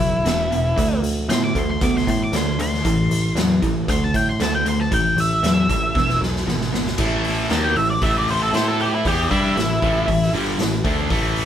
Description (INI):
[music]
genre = blues rock power trio and southern rock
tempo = 116 BPM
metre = 4/4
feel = straight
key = A minor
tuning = A4 = 438 Hz
[part]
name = octave-fuzz lead guitar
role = melody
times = 0.0-10.3 s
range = E4 to D6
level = -22 LUFS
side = equal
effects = wah, distortion
[part]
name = distorted electric guitar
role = riff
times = 0.0-11.5 s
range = E2 to A4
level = -22 LUFS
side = equal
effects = distortion
[part]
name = picked electric bass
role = bass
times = 0.0-11.5 s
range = E1 to A2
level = -24 LUFS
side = equal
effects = none
[part]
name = raw garage drum kit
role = drums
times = 0.0-11.5 s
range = crash cymbal, hi-hat, kick drum, snare drum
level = -24 LUFS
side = equal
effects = none
[sound]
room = moderate studio ambience, RT60 0.5 s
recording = band playing live in one room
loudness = -17 LUFS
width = side -10 dB against mid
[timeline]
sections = 0.0-7.0 A section; 7.0-11.5 B section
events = drum fill 6.0-7.0; lead electric guitar solo 7.0-11.5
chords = 0.0 E5; 0.8 D5; 2.8 Am; 3.9 D5; 4.9 A5; 6.0 E; 7.0 A5